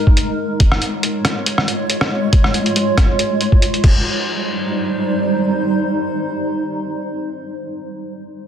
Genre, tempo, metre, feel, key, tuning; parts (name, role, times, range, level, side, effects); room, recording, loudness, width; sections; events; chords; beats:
deep dubstep; 139 BPM; 4/4; swing 54% on 16ths, half-time; C phrygian; A4 = 441 Hz
granular cloud pad; sustained chords; 0.0-7.6 s; G3 to Db5; -19 LUFS; right 1 dB; built-in reverb
electronic kick drum; drums; 0.1-3.9 s; -13 LUFS; equal; small room ambience
trip hop sampler-style drum kit; drums; 0.2-3.9 s; crash cymbal, hi-hat, rim click; -20 LUFS; equal; small room ambience, soft clipping on snare
moderate echo chamber reverb, RT60 1.5 s, digital ambience; dense, heavily limited modern master; -15 LUFS; side -9 dB against mid
0.0-4.1 A section; 4.1-7.5 B section
0.0 Ebsus4; 0.6 Db; 3.8 Cm
0.17 | 0.60 1.03 1.46 1.90 | 2.33 2.76 3.19 3.62 | 4.05 4.49 4.92 5.35 | 5.78 6.21 6.64 7.08